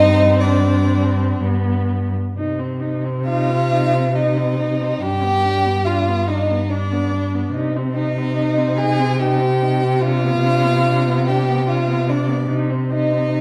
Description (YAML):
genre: classical, slow romantic movement for string quartet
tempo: 61-74 BPM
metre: 3/4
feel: rubato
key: C minor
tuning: A4 = 435 Hz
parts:
  - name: warm violin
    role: melody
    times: 0.0-13.4 s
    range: D5 to Ab5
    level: -24 LUFS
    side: equal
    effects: none
  - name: rich violin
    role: second line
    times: 0.0-13.4 s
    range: D4 to Ab4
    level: -24 LUFS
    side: equal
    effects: none
  - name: warm viola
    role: accompaniment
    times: 0.0-13.4 s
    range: B3 to Eb4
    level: -27 LUFS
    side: equal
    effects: none
  - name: warm cello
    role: bass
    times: 0.0-13.4 s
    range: G2 to C3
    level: -21 LUFS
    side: equal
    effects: none
room: moderate recital hall reverb, RT60 1.4 s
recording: dark, warm production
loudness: -18 LUFS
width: mono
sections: 0.0-2.4 A section; 2.4-13.4 B section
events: none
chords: 0.0 Gsus4; 1.4 G; 2.4 Cm; 5.0 G; 7.5 Cm; 10.0 Csus24; 12.5 Cm